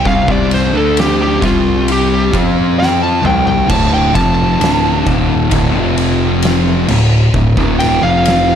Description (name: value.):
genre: stoner and doom metal.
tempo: 66 BPM.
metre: 4/4.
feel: straight.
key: D minor.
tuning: A4 = 440 Hz.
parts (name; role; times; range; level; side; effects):
fuzz lead guitar; melody; 0.0-8.6 s; F4 to A5; -16 LUFS; equal; distortion, slapback echo.
thick fuzz guitar; riff; 0.0-8.6 s; D2 to F4; -16 LUFS; left 8 dB; distortion.
growling picked electric bass; bass; 0.0-8.6 s; D1 to F2; -18 LUFS; equal; overdrive.
thick fuzz guitar; riff; 0.1-8.6 s; D2 to F4; -17 LUFS; right 8 dB; distortion.
oversized low-tuned drum kit; drums; 0.1-8.5 s; crash cymbal, kick drum, ride cymbal, snare drum, toms; -18 LUFS; equal; none.
room: small room reverb.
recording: none.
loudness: -10 LUFS.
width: side -8 dB against mid.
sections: 0.0-8.6 A section.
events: lead electric guitar solo 0.0-8.6; drum fill 2.8-3.7.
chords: 0.0 C5; 2.3 F5; 3.2 C5; 3.7 Dm; 5.8 F5; 6.9 Dm.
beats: | 0.05 0.96 1.88 2.79 | 3.70 4.61 5.52 6.43 | 7.35 8.26.